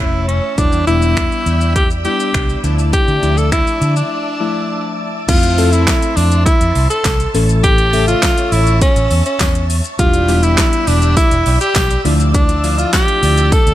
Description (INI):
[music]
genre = dance-pop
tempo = 102 BPM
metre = 4/4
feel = straight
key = D dorian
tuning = A4 = 440 Hz
[part]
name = bright alto saxophone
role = melody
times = 0.0-13.7 s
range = C#4 to A4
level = -17 LUFS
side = equal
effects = tape echo
[part]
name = glassy digital keys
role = accompaniment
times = 0.0-13.6 s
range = C#3 to E5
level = -21 LUFS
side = left 3 dB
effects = chorus, sidechain pumping
[part]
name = ensemble organ-string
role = sustained chords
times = 0.0-13.7 s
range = C5 to E6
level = -25 LUFS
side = right 1 dB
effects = ensemble chorus, sidechain pumping
[part]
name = vintage muted fingered electric bass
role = bass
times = 0.0-13.7 s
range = E1 to D3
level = -15 LUFS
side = equal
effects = sidechain pumping
[part]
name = pop drum kit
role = drums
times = 0.3-13.7 s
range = crash cymbal, finger snaps, handclaps, hi-hat, kick drum, shaker, snare drum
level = -16 LUFS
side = equal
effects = none
[part]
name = tambourine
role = percussion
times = 5.6-13.7 s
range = none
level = -32 LUFS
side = right 5 dB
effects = none
[sound]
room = digital ambience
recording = none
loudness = -11 LUFS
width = side -14 dB against mid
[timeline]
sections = 0.0-5.3 A section; 5.3-13.7 B section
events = break 4.1-5.3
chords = 0.0 A; 0.6 Em7; 2.6 Dmadd9; 5.3 Fmaj7; 7.3 A; 10.0 Em7; 12.1 Dmadd9